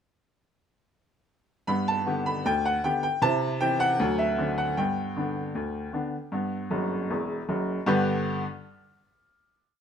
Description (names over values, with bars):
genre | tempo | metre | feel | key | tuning
ragtime piano | 78 BPM | 2/4 | straight | G major | A4 = 440 Hz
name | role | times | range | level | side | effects
bright upright piano | solo | 1.7-8.4 s | E1 to B5 | -25 LUFS | equal | none
room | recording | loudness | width
moderate stone room reverb, RT60 1.1 s | band playing live in one room | -25 LUFS | side -8 dB against mid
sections
1.7-7.9 A section; 7.9-9.4 final chord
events
upright piano fill 6.7-7.9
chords
1.7 G; 3.2 C; 4.0 D7; 4.8 G